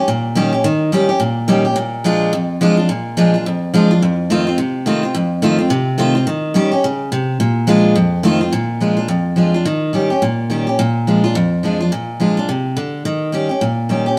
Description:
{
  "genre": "rock",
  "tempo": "213 BPM",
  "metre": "4/4",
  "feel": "swing 60% on 8ths",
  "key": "Bb mixolydian",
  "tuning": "A4 = 438 Hz",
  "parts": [
    { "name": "picked steel-string acoustic guitar", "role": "solo", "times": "0.0-14.2 s", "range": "F2 to G4", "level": "-16 LUFS", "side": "equal", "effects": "none" }
  ],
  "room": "wet stone room reverb, RT60 1.2 s",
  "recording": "band playing live in one room",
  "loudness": "-16 LUFS",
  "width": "mono",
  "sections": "0.0-8.5 A section; 8.5-14.2 B section",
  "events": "none",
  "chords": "0.0 Eb7; 1.8 Bb7; 4.0 F7; 6.3 Eb7; 7.4 Bb7; 8.0 F7; 8.5 Bb7; 9.7 Eb7; 10.8 Bb7; 13.1 Eb7",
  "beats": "0.08 0.36 | 0.64 0.93 1.21 1.49 | 1.77 2.05 2.33 2.61 | 2.90 3.18 3.46 3.74 | 4.02 4.30 4.58 4.87 | 5.15 5.43 5.71 5.99 | 6.28 6.56 6.84 7.12 | 7.40 7.68 7.96 8.25 | 8.53 8.81 9.09 9.38 | 9.66 9.94 10.22 10.51 | 10.79 11.07 11.35 11.64 | 11.92 12.20 12.48 12.77 | 13.05 13.33 13.62 13.90 | 14.18"
}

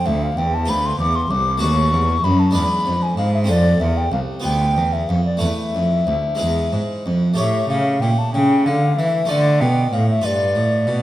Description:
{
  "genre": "classical, baroque-style sonata movement with continuo",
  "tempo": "63 BPM (dotted quarters)",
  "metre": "6/8",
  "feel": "rubato",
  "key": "unclear",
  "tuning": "A4 = 442 Hz",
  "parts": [
    { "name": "baroque flute", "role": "melody", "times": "0.0-11.0 s", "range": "D5 to D6", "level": "-21 LUFS", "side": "left 2 dB", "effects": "none" },
    { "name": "harpsichord", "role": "accompaniment", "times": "0.0-11.0 s", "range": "C2 to D5", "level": "-22 LUFS", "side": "equal", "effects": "none" },
    { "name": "rich cello", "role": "bass", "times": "0.1-11.0 s", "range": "C2 to E3", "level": "-20 LUFS", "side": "right 1 dB", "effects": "none" }
  ],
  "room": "wet recital hall reverb, RT60 1.4 s",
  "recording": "none",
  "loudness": "-16 LUFS",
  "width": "side -14 dB against mid",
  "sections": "0.0-7.4 A section; 7.4-11.0 B section",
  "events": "none",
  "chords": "0.0 F5; 0.7 Bdim/D; 1.6 B7/D#; 2.6 E7; 3.5 F; 4.4 Bdim/D; 5.4 Esus4; 6.4 E; 7.4 A7; 9.3 Dm; 10.2 G7",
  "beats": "0.69 | 1.62 2.55 | 3.49 4.44 | 5.42 6.40 | 7.38 8.34 | 9.30 10.24"
}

